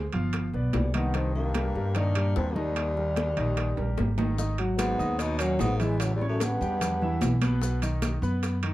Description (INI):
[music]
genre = Afro-Cuban jazz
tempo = 148 BPM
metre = 4/4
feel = straight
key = G# minor from 4.4 s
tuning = A4 = 440 Hz
[part]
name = warm concert grand piano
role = accompaniment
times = 0.0-8.7 s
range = B2 to D#6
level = -32 LUFS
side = equal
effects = none
[part]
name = upright bass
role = bass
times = 0.0-8.7 s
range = G1 to G2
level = -28 LUFS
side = equal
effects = none
[part]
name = timbales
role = percussion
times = 0.1-8.7 s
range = none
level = -36 LUFS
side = right 5 dB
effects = none
[part]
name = bongos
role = percussion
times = 0.3-8.7 s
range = none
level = -38 LUFS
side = left 5 dB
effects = none
[part]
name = congas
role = percussion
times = 0.3-8.7 s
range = none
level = -36 LUFS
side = left 1 dB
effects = none
[part]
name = growling trombone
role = melody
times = 0.7-7.4 s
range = F#3 to D#4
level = -31 LUFS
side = equal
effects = plate reverb
[part]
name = warm baritone saxophone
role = second line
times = 0.7-7.4 s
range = C#2 to B2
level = -36 LUFS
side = left 3 dB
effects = none
[part]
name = maracas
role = percussion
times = 4.4-8.6 s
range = none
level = -43 LUFS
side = left 6 dB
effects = none
[sound]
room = moderate club reverb, RT60 0.5 s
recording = dark, warm production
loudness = -24 LUFS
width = side -16 dB against mid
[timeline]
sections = 0.0-4.4 A section; 4.4-8.7 B section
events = drum fill 3.8-4.4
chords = 0.3 G7; 1.1 Cm9; 2.8 Eb; 4.4 G#m7; 6.0 A9; 7.6 B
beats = 0.34 0.74 | 1.15 1.55 1.96 2.36 | 2.77 3.17 3.58 3.98 | 4.39 4.79 5.20 5.60 | 6.00 6.41 6.81 7.22 | 7.62 8.02 8.43